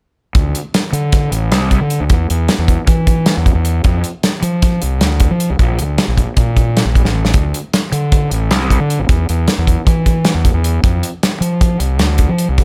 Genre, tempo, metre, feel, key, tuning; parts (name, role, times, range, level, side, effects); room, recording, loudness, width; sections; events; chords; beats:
math rock and midwest emo; 309 BPM (eighths); 9/8; straight; D minor; A4 = 438 Hz
modern studio drum kit; drums; 0.3-12.6 s; hi-hat, kick drum, snare drum; -16 LUFS; equal
fuzz fingered electric bass; bass; 0.4-12.6 s; A1 to F3; -17 LUFS; equal; overdrive
light reverb; -14 LUFS; mono
0.4-12.6 A section
drum fill 7.1
| 0.35 0.55 0.74 0.94 1.13 1.33 1.52 1.72 1.91 | 2.10 2.30 2.49 2.69 2.88 3.07 3.27 3.46 3.66 | 3.85 4.04 4.24 4.43 4.63 4.82 5.02 5.21 5.40 | 5.60 5.79 5.99 6.18 6.38 6.57 6.76 6.96 7.15 | 7.35 7.54 7.74 7.93 8.12 8.32 8.51 8.71 8.90 | 9.09 9.29 9.48 9.68 9.87 10.06 10.26 10.45 10.65 | 10.84 11.04 11.23 11.42 11.62 11.81 12.01 12.20 12.39 | 12.59